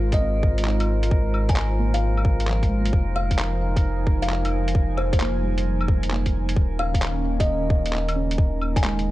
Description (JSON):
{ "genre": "future garage", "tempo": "132 BPM", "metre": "4/4", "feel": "swing 67% on 16ths", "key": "F minor", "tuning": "A4 = 440 Hz", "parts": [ { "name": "muted felt-like synth keys", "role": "accompaniment", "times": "0.0-9.1 s", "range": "F3 to Eb4", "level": "-33 LUFS", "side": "right 3 dB", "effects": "chorus, sidechain pumping, tape echo" }, { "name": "airy breathy pad", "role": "sustained chords", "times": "0.0-9.1 s", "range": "Eb3 to Ab5", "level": "-30 LUFS", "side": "right 1 dB", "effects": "chorus, sidechain pumping" }, { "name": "warm sub bass", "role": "bass", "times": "0.0-9.1 s", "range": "Eb1 to Ab1", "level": "-24 LUFS", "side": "equal", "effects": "sidechain pumping" }, { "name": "drifting glass-harmonics texture", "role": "texture", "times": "0.0-9.1 s", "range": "Bb4", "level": "-36 LUFS", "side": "right 4 dB", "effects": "chorus, built-in reverb" }, { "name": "kalimba", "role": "melody", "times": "0.1-9.0 s", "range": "C5 to Ab5", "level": "-30 LUFS", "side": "left 1 dB", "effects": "analog delay" }, { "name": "electronic kick drum", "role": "drums", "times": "0.1-8.8 s", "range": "none", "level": "-21 LUFS", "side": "equal", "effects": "small room ambience" }, { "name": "lo-fi sampler-style drum kit", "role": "drums", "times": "0.1-9.1 s", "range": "claves, handclaps, hi-hat", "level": "-30 LUFS", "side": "equal", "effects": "overdrive, small room ambience" } ], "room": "little or no reverb", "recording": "dry, gritty hardware recording, nothing above 10.7 kHz", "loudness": "-20 LUFS", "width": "side -16 dB against mid", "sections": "0.0-9.1 A section", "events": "none", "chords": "0.0 Ab6; 2.9 Fm7; 6.6 Eb7sus4" }